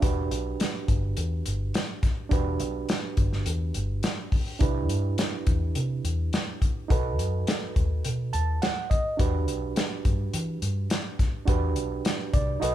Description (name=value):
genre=straight-eighth soul blues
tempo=105 BPM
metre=4/4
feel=straight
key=E minor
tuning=A4 = 440 Hz
part: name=overdriven reed electric piano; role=accompaniment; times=0.0-12.7 s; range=D4 to A5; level=-32 LUFS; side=right 6 dB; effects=harmonic tremolo
part: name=vintage muted fingered electric bass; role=bass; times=0.0-12.7 s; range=E1 to E3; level=-28 LUFS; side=equal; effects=none
part: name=warm soul drum kit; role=drums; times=0.0-12.7 s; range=hi-hat, kick drum, snare drum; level=-26 LUFS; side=left 1 dB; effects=none
room=moderate large studio reverb, RT60 1.1 s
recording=band playing live in one room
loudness=-24 LUFS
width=side -12 dB against mid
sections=0.0-12.7 A section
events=reed electric piano fill 8.0-9.2, 12.0-12.7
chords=0.0 Em9; 4.6 Cmaj7; 6.9 B7; 9.2 Em9